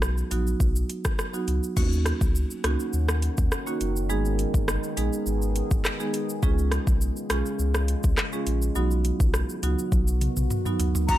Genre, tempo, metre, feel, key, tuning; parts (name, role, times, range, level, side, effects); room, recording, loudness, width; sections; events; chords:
dancehall; 103 BPM; 4/4; straight; A4 = 438 Hz
warm sub bass; bass; 0.0-11.2 s; Gb1 to Eb2; -26 LUFS; equal
afro-pop drum kit; drums; 0.0-11.2 s; crash cymbal, handclaps, hi-hat, kick drum, rim click, shaker, toms; -26 LUFS; equal; overdrive
marimba with medium mallets; accompaniment; 0.3-11.2 s; F#3 to Ab4; -30 LUFS; right 3 dB
deep dark ambient pad; sustained chords; 2.6-11.2 s; Db3 to Ab4; -34 LUFS; left 1 dB; chorus, built-in reverb, sidechain pumping
hollow concert flute; melody; 11.1-11.2 s; Bb5; -22 LUFS; left 3 dB
little or no reverb; -23 LUFS; side -14 dB against mid
0.0-1.8 A section; 1.8-11.1 B section
drum fill 9.9-11.1
0.0 B; 1.8 Ebm7; 4.1 Abm; 6.4 Db; 8.8 B